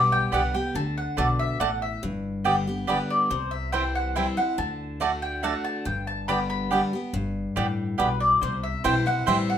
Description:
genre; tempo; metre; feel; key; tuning
bluegrass; 141 BPM; 3/4; straight; G major; A4 = 440 Hz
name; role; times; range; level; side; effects
mandolin; melody; 0.0-9.6 s; B4 to B5; -26 LUFS; left 1 dB; none
picked steel-string acoustic guitar; accompaniment; 0.0-9.6 s; G2 to G4; -29 LUFS; left 2 dB; none
upright bass; bass; 0.0-9.6 s; G1 to D2; -31 LUFS; left 1 dB; none
mandolin; stabs; 0.3-9.4 s; A3 to A5; -26 LUFS; right 4 dB; none
room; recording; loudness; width
moderate studio reverb, RT60 0.8 s; minimal, uncompressed stereo recording; -23 LUFS; side -9 dB against mid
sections
0.0-7.1 A section; 7.1-9.6 A section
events
none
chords
0.0 G; 0.7 D; 2.0 G; 3.3 C; 4.6 D; 5.9 G; 8.4 C

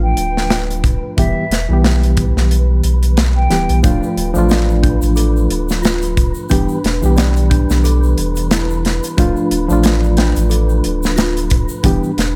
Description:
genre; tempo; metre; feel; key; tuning
trip hop; 90 BPM; 4/4; swing 58% on 16ths; D dorian; A4 = 440 Hz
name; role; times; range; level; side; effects
hollow concert flute; melody; 0.0-3.8 s; E5 to G5; -26 LUFS; equal; tape echo
reed electric piano; accompaniment; 0.0-12.1 s; E3 to G4; -22 LUFS; equal; harmonic tremolo
warm sub bass; bass; 0.0-12.3 s; D1 to B1; -18 LUFS; equal; none
wind-like tuned noise texture; texture; 0.0-12.4 s; B4; -32 LUFS; equal; built-in reverb
modern studio drum kit; drums; 0.2-12.4 s; hi-hat, kick drum, snare drum; -20 LUFS; equal; none
celesta; arpeggios; 3.8-12.4 s; D4 to D5; -25 LUFS; equal; vintage 12-bit sampler grit, tape echo
tube shaker; percussion; 3.8-12.1 s; none; -38 LUFS; equal; none
room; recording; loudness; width
small room ambience; none; -15 LUFS; mono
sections
0.0-12.4 A section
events
none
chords
0.0 Dm; 1.2 Em; 3.8 Dm; 6.5 Em; 9.2 Dm; 11.8 Em

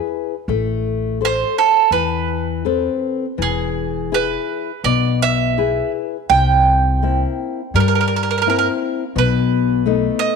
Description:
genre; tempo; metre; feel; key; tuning
fado-style ballad; 83 BPM; 4/4; rubato; unclear; A4 = 440 Hz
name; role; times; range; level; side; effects
bowl-back mandolin; melody; 0.0-10.4 s; G#4 to G5; -18 LUFS; right 8 dB; none
nylon-string guitar; accompaniment; 0.0-10.4 s; B2 to C5; -21 LUFS; left 11 dB; none
upright bass; bass; 0.5-10.1 s; E1 to G2; -21 LUFS; equal; none
room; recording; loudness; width
moderate echo chamber reverb, RT60 1.6 s, small room ambience; 1960s-style stereo with parts hard left and right; -16 LUFS; side -5 dB against mid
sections
0.0-10.4 A section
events
none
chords
0.5 Amadd9; 3.4 E; 6.3 C7; 9.2 B7

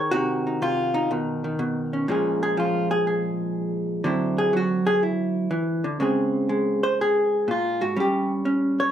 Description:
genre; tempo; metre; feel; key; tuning
solo jazz; 122 BPM; 4/4; swing 67% on 8ths; Bb minor; A4 = 440 Hz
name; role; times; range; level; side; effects
vintage hollow-body jazz guitar; solo; 0.0-8.9 s; Ab2 to Db5; -21 LUFS; equal; none
room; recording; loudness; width
wet studio reverb, RT60 0.5 s; none; -21 LUFS; side -10 dB against mid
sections
0.0-2.1 A section; 2.1-8.9 B section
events
hollow-body jazz guitar solo 2.1-8.9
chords
0.1 Cdim; 1.1 Badd9; 2.1 Bbm7; 4.0 D9; 6.0 Db5; 8.0 N.C.

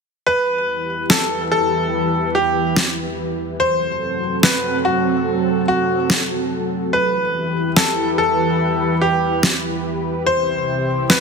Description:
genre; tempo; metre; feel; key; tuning
heavy wobble dubstep; 144 BPM; 4/4; half-time; E minor; A4 = 440 Hz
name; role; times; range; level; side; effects
bright grand piano; melody; 0.3-11.2 s; F#4 to C5; -19 LUFS; equal; ping-pong delay
lush unison pad; sustained chords; 0.7-11.2 s; C3 to B4; -21 LUFS; right 1 dB; chorus, phaser
electronic snare drum; drums; 1.1-11.2 s; none; -17 LUFS; equal; overdrive, small room ambience
room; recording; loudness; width
moderate lush hall reverb, RT60 2.3 s; dense, heavily limited modern master; -16 LUFS; side -4 dB against mid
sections
0.3-11.2 A section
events
filter sweep on analog synth pad 0.3-11.2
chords
0.3 Em; 3.6 F#dim; 6.9 Em; 10.3 C

